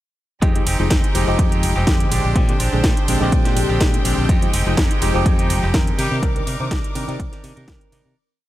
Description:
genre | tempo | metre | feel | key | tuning
filtered disco house | 124 BPM | 4/4 | swing 54% on 16ths | F dorian | A4 = 440 Hz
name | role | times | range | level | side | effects
tine electric piano | accompaniment | 0.4-8.1 s | D3 to D5 | -24 LUFS | left 1 dB | phaser, vintage 12-bit sampler grit, sidechain pumping
clear studio string section | sustained chords | 0.4-8.1 s | Ab3 to D6 | -28 LUFS | equal | sidechain pumping
direct-recorded clean electric guitar | riff | 0.4-8.2 s | G3 to Bb4 | -28 LUFS | right 2 dB | vintage 12-bit sampler grit, sidechain pumping
modern bright fingered electric bass | bass | 0.4-8.1 s | F1 to C3 | -22 LUFS | equal | sidechain pumping
electronic kick drum | drums | 0.4-7.8 s | none | -19 LUFS | equal | overdrive
house drum kit | drums | 0.4-8.0 s | hi-hat, ride cymbal, snare drum | -26 LUFS | equal | overdrive, sidechain pumping on hats, sidechain pumping on cymbals
brilliant horn section | melody | 6.0-6.2 s | G3 to G4 | -28 LUFS | equal | vintage 12-bit sampler grit, sidechain pumping, ping-pong delay
room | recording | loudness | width
little or no reverb | none | -16 LUFS | side -14 dB against mid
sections
0.4-8.2 drop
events
drop 0.4-8.2; fade-out 5.6-8.2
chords
0.4 Fm9; 2.1 Bb13; 4.3 Fm9; 6.0 Cm9

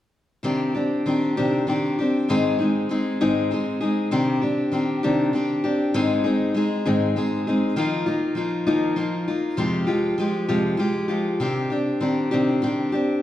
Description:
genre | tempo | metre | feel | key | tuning
rock | 66 BPM (dotted quarters) | 6/8 | straight | C minor | A4 = 439 Hz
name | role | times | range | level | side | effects
picked steel-string acoustic guitar | solo | 0.4-13.2 s | F2 to Ab4 | -20 LUFS | left 1 dB | none
room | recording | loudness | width
wet recital hall reverb, RT60 1.5 s | dark, warm production | -20 LUFS | side -12 dB against mid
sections
0.4-4.1 A section; 4.1-13.2 B section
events
none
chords
0.4 Cmadd9; 2.3 Ab; 4.1 Cmadd9; 5.9 Ab; 7.8 Ebsus2; 9.6 Fmadd9; 11.4 Cmadd9

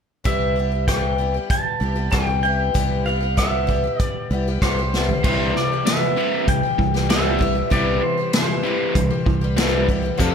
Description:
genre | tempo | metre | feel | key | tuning
folk rock and heartland rock | 97 BPM | 4/4 | straight | C major | A4 = 444 Hz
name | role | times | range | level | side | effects
picked twelve-string acoustic guitar | accompaniment | 0.2-10.3 s | C3 to A4 | -25 LUFS | left 5 dB | none
pedal steel guitar | melody | 0.3-9.5 s | C5 to A5 | -24 LUFS | equal | slapback echo
fingered electric bass | bass | 0.3-10.3 s | C2 to F2 | -23 LUFS | right 1 dB | none
unplugged drum kit | drums | 0.3-10.3 s | crash cymbal, hi-hat, kick drum, rim click, snare drum, toms | -22 LUFS | equal | none
crunchy overdriven guitar | riff | 5.2-10.3 s | F2 to G3 | -23 LUFS | right 1 dB | spring reverb
room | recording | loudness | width
light reverb | none | -18 LUFS | side -7 dB against mid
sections
0.3-5.2 A section; 5.2-10.3 B section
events
drum fill 4.9-5.2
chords
0.3 Cmaj7

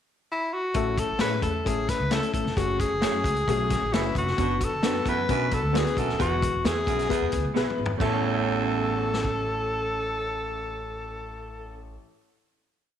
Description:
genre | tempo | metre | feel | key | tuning
uptempo 1960s-style soul | 132 BPM | 4/4 | straight | A major | A4 = 441 Hz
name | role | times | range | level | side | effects
warm tenor saxophone | melody | 0.3-12.0 s | E4 to B4 | -28 LUFS | left 2 dB | slapback echo
warm baby grand piano | accompaniment | 0.7-12.0 s | A1 to C#5 | -32 LUFS | left 8 dB | none
vintage drum kit | drums | 0.7-9.4 s | crash cymbal, hi-hat, kick drum, snare drum, toms | -30 LUFS | left 2 dB | none
upright bass | bass | 0.8-12.0 s | D#1 to A2 | -31 LUFS | right 1 dB | none
electric guitar through a small old amp | stabs | 1.2-12.0 s | F#3 to B4 | -33 LUFS | right 9 dB | ensemble chorus
raspy baritone saxophone | riff | 4.4-9.3 s | E2 to B2 | -31 LUFS | right 10 dB | none
room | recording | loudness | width
moderate echo chamber reverb, RT60 1.3 s, small room ambience | 1960s-style stereo with parts hard left and right | -23 LUFS | side -9 dB against mid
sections
0.0-0.8 pickup bar; 0.8-8.0 verse; 8.0-11.6 final chord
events
drum fill 7.6-8.0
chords
0.0 N.C.; 0.8 A; 2.6 F#madd9; 4.4 Bm/F#; 6.2 E; 8.0 A

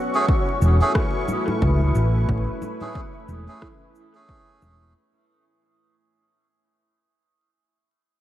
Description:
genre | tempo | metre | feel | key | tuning
ambient dub | 90 BPM | 4/4 | swing 59% on 16ths | unclear | A4 = 441 Hz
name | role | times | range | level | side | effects
deep dark ambient pad | sustained chords | 0.0-5.0 s | A3 to B4 | -28 LUFS | left 1 dB | chorus, built-in reverb
handpan | arpeggios | 0.0-6.5 s | E4 to A4 | -53 LUFS | left 2 dB | none
bubbling stepped-filter texture | texture | 0.0-5.0 s | C#4 to C#6 | -31 LUFS | left 1 dB | chorus, built-in reverb
melodica | stabs | 0.1-4.9 s | A3 to G#4 | -27 LUFS | right 2 dB | dub echo
electronic kick drum | drums | 0.3-4.4 s | none | -24 LUFS | equal | overdrive, small room reverb
hollow-body short-scale fingered electric bass | bass | 0.6-4.9 s | E1 to C#2 | -19 LUFS | equal | tube saturation
electronic cabasa, rim click and congas | drums | 0.6-4.8 s | none | -31 LUFS | left 1 dB | overdrive, small room reverb, dub echo
room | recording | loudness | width
light reverb | vinyl crackle | -18 LUFS | side -13 dB against mid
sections
0.0-5.0 A section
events
fade-out 0.0-5.0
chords
0.0 Amaj7

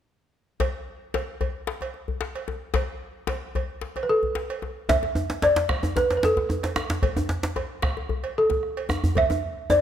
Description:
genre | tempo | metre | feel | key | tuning
west african traditional, West African drum ensemble | 112 BPM | 4/4 | straight | unclear | A4 = 439 Hz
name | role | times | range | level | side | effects
cowbell | percussion | 0.6-9.8 s | none | -34 LUFS | right 6 dB | none
djembe | percussion | 0.6-9.8 s | none | -30 LUFS | left 4 dB | none
balafon | melody | 4.0-9.8 s | A4 to E5 | -22 LUFS | equal | none
bombo | percussion | 4.9-9.8 s | none | -29 LUFS | right 1 dB | none
djembe | percussion | 4.9-9.8 s | none | -26 LUFS | right 1 dB | none
room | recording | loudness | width
light reverb | none | -23 LUFS | side -10 dB against mid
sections
0.6-4.9 A section; 4.9-9.8 B section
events
none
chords
none

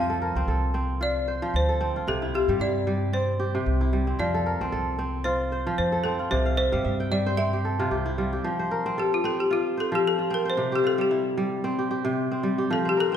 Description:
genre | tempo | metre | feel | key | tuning
west african traditional, West African string and xylophone music | 113 BPM | 4/4 | swing 55% on 16ths | F major | A4 = 439 Hz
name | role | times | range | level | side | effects
balafon | melody | 0.0-13.2 s | F4 to F5 | -26 LUFS | left 2 dB | none
kora | arpeggios | 0.0-13.2 s | C3 to G5 | -26 LUFS | equal | none
upright bass | bass | 0.0-8.4 s | C2 to G2 | -28 LUFS | equal | none
room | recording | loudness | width
wet recital hall reverb, RT60 1.6 s | recorded in a church or concert hall | -23 LUFS | side -9 dB against mid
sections
0.0-8.4 A section; 8.4-13.2 B section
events
kora fill 6.3-8.4; balafon solo 8.4-13.2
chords
0.0 F; 2.1 C; 4.2 F; 6.3 C; 8.4 F; 10.6 C

